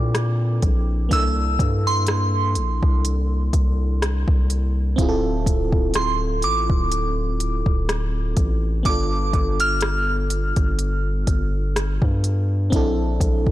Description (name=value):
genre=contemporary R&B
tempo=62 BPM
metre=4/4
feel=swing 54% on 16ths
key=D minor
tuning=A4 = 440 Hz
part: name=glassy synth bell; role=melody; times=0.0-12.2 s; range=C6 to F6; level=-26 LUFS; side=right 2 dB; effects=chorus, phaser, tape echo
part: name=FM electric piano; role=accompaniment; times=0.0-13.5 s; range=Bb3 to A4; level=-28 LUFS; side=right 1 dB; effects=chorus
part: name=long sustained 808-style bass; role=bass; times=0.0-13.5 s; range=D1 to Bb2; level=-22 LUFS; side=equal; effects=none
part: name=smooth R&B drum kit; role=drums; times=0.1-13.5 s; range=hi-hat, kick drum, rim click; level=-22 LUFS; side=equal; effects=overdrive
room=digital ambience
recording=blown-out, overdriven recording, overdrive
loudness=-18 LUFS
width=side -15 dB against mid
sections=0.0-13.5 A section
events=none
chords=0.0 Bbmaj9#11; 1.1 C13; 5.0 Dm9; 8.9 G9; 12.7 Bbmaj9#11